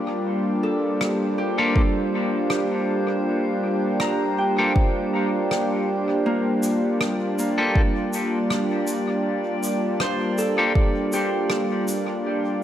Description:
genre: ambient dub.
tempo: 80 BPM.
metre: 4/4.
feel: swing 55% on 16ths.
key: G minor.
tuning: A4 = 440 Hz.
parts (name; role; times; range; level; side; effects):
warm analog pad; sustained chords; 0.0-12.6 s; G3 to G4; -23 LUFS; equal; chorus.
Celtic harp; arpeggios; 0.0-12.6 s; Bb3 to Bb5; -29 LUFS; equal; tape echo.
drifting glass-harmonics texture; texture; 0.0-12.6 s; D4 to D5; -29 LUFS; right 3 dB; chorus, built-in reverb.
rim click and shaker; drums; 1.0-12.0 s; none; -31 LUFS; left 1 dB; dub echo.
clean electric guitar; stabs; 1.6-10.7 s; Bb3 to A4; -27 LUFS; left 2 dB; dub echo.
electronic kick drum; drums; 1.8-10.9 s; none; -20 LUFS; equal; none.
room: moderate echo chamber reverb, RT60 2.3 s.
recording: none.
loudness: -20 LUFS.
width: side -11 dB against mid.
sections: 0.0-12.6 A section.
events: none.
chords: 0.0 Gm9.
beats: | 0.26 1.00 1.75 2.50 | 3.25 4.00 4.75 5.50 | 6.25 7.00 7.75 8.51 | 9.26 10.01 10.76 11.51 | 12.26.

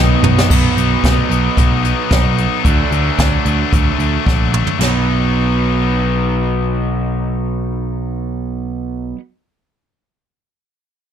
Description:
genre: classic rock.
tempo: 112 BPM.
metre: 4/4.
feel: straight.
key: unclear.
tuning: A4 = 439 Hz.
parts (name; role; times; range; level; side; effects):
biting overdriven guitar; riff; 0.0-9.2 s; B2 to D#4; -20 LUFS; left 17 dB; none.
biting overdriven guitar; riff; 0.0-0.5 s; B2 to D#4; -21 LUFS; left 1 dB; none.
raw garage guitar; riff; 0.0-9.2 s; B2 to D4; -21 LUFS; right 16 dB; overdrive.
picked electric bass; bass; 0.0-9.1 s; A#1 to D2; -18 LUFS; equal; none.
jazz brush drum kit; drums; 0.2-4.9 s; china cymbal, crash cymbal, hi-hat, kick drum, snare drum, toms; -16 LUFS; equal; none.
room: little or no reverb.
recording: none.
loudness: -13 LUFS.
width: side -9 dB against mid.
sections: 0.5-4.8 A section; 4.8-9.1 B section.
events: drum fill 0.0-0.5, 4.3-4.8.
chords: 0.0 B; 2.6 D; 4.8 B.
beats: | 0.50 1.04 1.57 2.11 | 2.65 3.19 3.73 4.26 | 4.80 5.34 5.88 6.42 | 6.96 7.49 8.03 8.57.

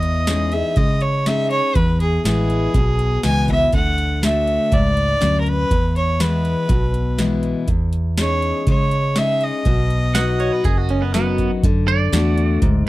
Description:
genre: honky-tonk and classic country.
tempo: 122 BPM.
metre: 4/4.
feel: straight.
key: E major.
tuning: A4 = 439 Hz.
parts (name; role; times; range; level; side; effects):
clear fiddle; melody; 0.0-11.2 s; G#4 to G#5; -21 LUFS; right 1 dB; none.
picked steel-string acoustic guitar; accompaniment; 0.0-12.9 s; E2 to G#4; -22 LUFS; left 3 dB; none.
vintage muted fingered electric bass; bass; 0.0-12.9 s; F#1 to C#3; -20 LUFS; equal; none.
booming analog drum machine; drums; 0.0-12.9 s; hi-hat, kick drum, snare drum; -21 LUFS; equal; none.
twangy electric guitar; second line; 10.1-12.8 s; B3 to F#5; -23 LUFS; right 6 dB; tape echo.
room: little or no reverb.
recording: dry, close 1970s-style studio recording.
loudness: -16 LUFS.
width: side -17 dB against mid.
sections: 0.0-11.6 A section; 11.6-12.9 B section.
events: clean electric guitar solo 11.6-12.9.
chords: 0.0 C#madd9/E; 1.8 E; 3.7 D; 5.7 E; 7.7 C#madd9/E; 9.7 B; 11.6 D.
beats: 0.28 0.77 1.27 | 1.76 2.25 2.75 3.24 | 3.74 4.23 4.72 5.22 | 5.71 6.21 6.70 7.19 | 7.69 8.18 8.68 9.17 | 9.66 10.16 10.65 11.15 | 11.64 12.13 12.63.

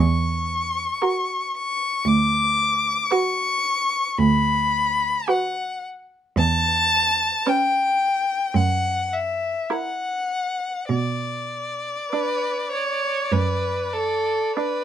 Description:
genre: classical, slow romantic movement for string quartet.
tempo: 48-58 BPM.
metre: 4/4.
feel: rubato.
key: B minor.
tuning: A4 = 440 Hz.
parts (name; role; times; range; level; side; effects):
rich violin; melody; 0.0-14.8 s; D5 to D6; -22 LUFS; left 3 dB; none.
clear cello; bass; 0.0-14.3 s; D2 to B2; -22 LUFS; right 4 dB; none.
rich violin; second line; 1.0-14.8 s; A4 to C#5; -24 LUFS; equal; none.
clear viola; accompaniment; 1.0-14.8 s; C#4 to F#4; -24 LUFS; right 5 dB; none.
room: light reverb.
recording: none.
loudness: -20 LUFS.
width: side -10 dB against mid.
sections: 0.0-14.8 A section.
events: none.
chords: 0.0 F#7/E; 2.1 Bm/D; 6.4 C#m7b5/E; 8.6 F#7; 10.9 Bm.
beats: 1.03 | 2.06 3.12 4.20 5.29 | 6.38 7.47 8.55 9.71 | 10.89 12.13 13.33 14.56.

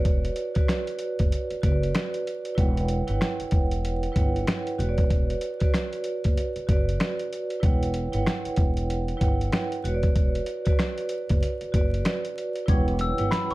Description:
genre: hip hop, boom-bap hip-hop.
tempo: 95 BPM.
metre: 4/4.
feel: swing 61% on 16ths.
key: unclear.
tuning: A4 = 440 Hz.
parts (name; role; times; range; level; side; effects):
vibraphone with hard mallets; accompaniment; 0.0-13.5 s; E4 to G5; -29 LUFS; right 3 dB; cassette tape, high-pass filter, low-pass filter, plate reverb.
upright bass; bass; 0.0-13.5 s; E1 to G1; -28 LUFS; equal; none.
dusty soul sampler-style drum kit; drums; 0.1-13.5 s; hi-hat, kick drum, rim click, snare drum; -24 LUFS; equal; none.
percussive tonewheel organ; sustained chords; 12.7-13.5 s; E3 to C#4; -36 LUFS; left 1 dB; chorus vibrato, slow rotary speaker, high-pass filter, low-pass filter, plate reverb.
glockenspiel with brass mallets; melody; 13.0-13.5 s; B5 to E6; -27 LUFS; left 3 dB; high-pass filter, low-pass filter.
room: little or no reverb.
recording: vinyl crackle.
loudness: -23 LUFS.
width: side -19 dB against mid.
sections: 0.0-12.7 A section.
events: none.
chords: 0.0 D6; 2.6 Em69; 4.8 D69/E; 7.6 Em69; 9.8 D69/E; 12.7 Em69.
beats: | 0.05 0.68 1.31 1.95 | 2.58 3.21 3.84 4.47 | 5.10 5.74 6.37 7.00 | 7.63 8.26 8.89 9.52 | 10.16 10.79 11.42 12.05 | 12.68 13.31.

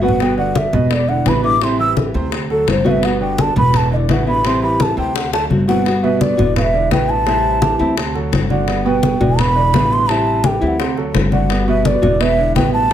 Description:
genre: latin, Cuban son and guajira.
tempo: 170 BPM.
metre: 4/4.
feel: straight.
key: G major.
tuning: A4 = 440 Hz.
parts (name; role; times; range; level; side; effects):
mellow hollow bansuri; melody; 0.0-12.9 s; A4 to E6; -18 LUFS; equal; none.
nylon-string guitar; accompaniment; 0.0-12.9 s; D3 to F#4; -22 LUFS; left 3 dB; none.
warm grand piano; arpeggios; 0.0-12.9 s; B2 to C5; -20 LUFS; right 6 dB; none.
upright bass; bass; 0.0-12.9 s; E1 to D2; -20 LUFS; equal; none.
congas; percussion; 0.1-12.9 s; none; -20 LUFS; left 2 dB; none.
bongos; percussion; 0.2-12.9 s; none; -25 LUFS; left 6 dB; none.
room: moderate studio reverb, RT60 0.5 s.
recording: none.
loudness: -13 LUFS.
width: side -10 dB against mid.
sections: 0.0-5.9 A section; 5.9-12.9 B section.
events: drum fill 0.0, 5.2-5.9; bansuri solo 0.0-5.9.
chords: 0.2 Gmaj7; 0.9 Em7; 1.6 Am7; 2.3 D7; 3.0 Gmaj7; 3.7 Em7; 4.4 Am7; 5.2 D7; 5.9 Gmaj7; 6.6 Em7; 7.3 Am7; 8.0 D7; 8.7 Gmaj7; 9.4 Em7; 10.1 Am7; 10.8 D7; 11.5 Gmaj7; 12.2 Em7.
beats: | 0.20 0.55 0.91 1.26 | 1.62 1.97 2.32 2.68 | 3.03 3.38 3.74 4.09 | 4.45 4.80 5.15 5.50 | 5.86 6.21 6.56 6.92 | 7.27 7.62 7.97 8.33 | 8.68 9.03 9.38 9.74 | 10.09 10.44 10.79 11.15 | 11.50 11.85 12.20 12.55 | 12.91.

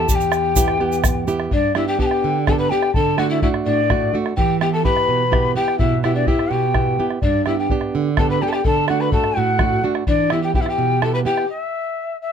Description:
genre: andean folk, Andean ensemble.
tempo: 84 BPM (dotted quarters).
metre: 6/8.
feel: straight.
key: E minor.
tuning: A4 = 440 Hz.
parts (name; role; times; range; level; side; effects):
mellow quena; melody; 0.0-12.3 s; D5 to B5; -22 LUFS; left 2 dB; none.
breathy mellow pan flute; second line; 0.0-11.5 s; D4 to B4; -23 LUFS; left 5 dB; none.
nylon-string guitar; accompaniment; 0.0-11.5 s; E2 to G4; -21 LUFS; right 5 dB; none.
bombo; percussion; 0.1-11.5 s; none; -22 LUFS; equal; none.
egg shaker; percussion; 0.1-1.3 s; none; -26 LUFS; right 8 dB; none.
room: light reverb.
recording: none.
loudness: -16 LUFS.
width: side -8 dB against mid.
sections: 0.0-1.5 A section; 1.5-12.3 B section.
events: stop 11.5-12.3.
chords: 0.0 Em; 1.5 G; 2.9 D; 4.4 Em; 7.2 G; 8.7 D; 10.1 Em.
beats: | 0.09 0.80 | 1.52 2.23 | 2.94 3.66 | 4.37 5.09 | 5.80 6.51 | 7.23 7.94 | 8.65 9.37 | 10.08 10.79 | 11.50 12.21.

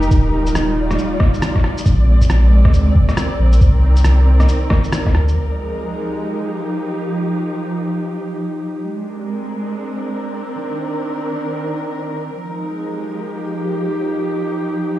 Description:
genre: future garage.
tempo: 137 BPM.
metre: 4/4.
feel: swing 62% on 16ths.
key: F dorian.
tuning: A4 = 441 Hz.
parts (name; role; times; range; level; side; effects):
muted studio string section; sustained chords; 0.0-15.0 s; Eb3 to D5; -21 LUFS; right 1 dB; vintage 12-bit sampler grit, sidechain pumping.
soft dub sub bass; bass; 0.0-5.3 s; Eb1 to D2; -12 LUFS; equal; none.
electronic shaker and rim click; drums; 0.0-5.3 s; none; -22 LUFS; equal; low-pass filter on perc, low-pass filter on snare, low-pass filter on room.
electronic kick drum; drums; 0.1-5.1 s; none; -14 LUFS; equal; none.
room: light reverb, digital ambience.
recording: played on a big sound system in a bare room, large studio reverb.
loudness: -15 LUFS.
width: side -15 dB against mid.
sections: 0.0-5.4 A section; 5.4-15.0 B section.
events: none.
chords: 0.1 Ebmaj9; 1.9 Bb9; 3.6 Cm9; 5.4 Fm11; 7.1 Ebadd9; 8.9 Bb9; 10.6 Cm9; 12.4 Fm11; 14.1 Ebadd9.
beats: | 0.11 0.55 0.98 1.42 | 1.86 2.30 2.74 3.17 | 3.61 4.05 4.49 4.93 | 5.36 5.80 6.24 6.68 | 7.12 7.55 7.99 8.43 | 8.87 9.31 9.74 10.18 | 10.62 11.06 11.50 11.93 | 12.37 12.81 13.25 13.69 | 14.12 14.56.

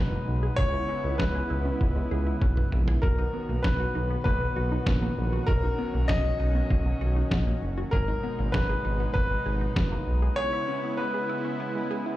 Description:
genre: synth-pop.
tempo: 98 BPM.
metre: 4/4.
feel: straight.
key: B major.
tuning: A4 = 438 Hz.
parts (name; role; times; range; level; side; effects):
clear concert grand piano; melody; 0.0-12.2 s; A#4 to D#5; -32 LUFS; left 1 dB; tape echo.
brassy analog pad; sustained chords; 0.0-12.2 s; B2 to E4; -33 LUFS; right 1 dB; chorus.
wide unison pluck; arpeggios; 0.0-12.1 s; F#3 to G#4; -37 LUFS; right 1 dB; phaser, tape echo.
smooth synth bass; bass; 0.0-10.3 s; F#1 to C#2; -27 LUFS; equal; none.
lo-fi sampler-style drum kit; drums; 0.6-9.9 s; kick drum, snare drum, toms; -27 LUFS; equal; none.
room: light reverb, digital ambience.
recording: played on a big sound system in a bare room, large studio reverb.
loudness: -24 LUFS.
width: side -15 dB against mid.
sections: 0.0-12.2 A section.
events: drum fill 2.4-3.0; break 10.4-12.2.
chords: 0.0 Bmaj7; 0.6 C#m7; 3.0 Bmaj7; 7.9 G#madd9; 10.4 C#m7.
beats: | 0.58 1.19 1.81 2.42 | 3.03 3.64 4.25 4.87 | 5.48 6.09 6.70 7.32 | 7.93 8.54 9.15 9.77 | 10.38 10.99 11.60.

